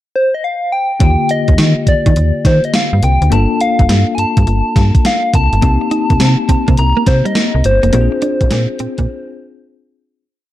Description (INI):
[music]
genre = R&B, new jack swing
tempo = 104 BPM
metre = 4/4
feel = swing 65% on 16ths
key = unclear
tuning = A4 = 441 Hz
[part]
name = soft struck synth lead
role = melody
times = 0.2-9.7 s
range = C5 to Bb5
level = -16 LUFS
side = left 1 dB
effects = chorus, tremolo
[part]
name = bell-like tine electric piano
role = accompaniment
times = 1.0-10.3 s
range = D3 to A4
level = -19 LUFS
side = left 5 dB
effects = medium stereo tremolo
[part]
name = slap-like FM bass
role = bass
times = 1.0-9.1 s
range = F1 to Eb3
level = -13 LUFS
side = equal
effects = none
[part]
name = gated 80s digital drum machine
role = drums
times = 1.0-9.1 s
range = hi-hat, kick drum, snare drum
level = -14 LUFS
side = equal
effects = gated reverb, gated reverb snare
[part]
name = direct-recorded clean electric guitar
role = riff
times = 5.6-9.1 s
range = G3 to Eb4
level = -20 LUFS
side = right 3 dB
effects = analog chorus
[sound]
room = digital ambience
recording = dark, warm production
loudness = -10 LUFS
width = side -14 dB against mid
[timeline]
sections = 0.0-1.0 pickup bar; 1.0-10.2 verse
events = fade-out 7.9-10.2; break 9.1-10.2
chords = 0.0 N.C.; 1.0 Ebmaj9; 3.3 Gm9; 5.6 Cm7; 7.9 Bb9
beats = 0.43 | 1.01 1.58 2.16 2.74 | 3.31 3.89 4.47 5.04 | 5.62 6.20 6.78 7.35 | 7.93 8.51 9.08 9.66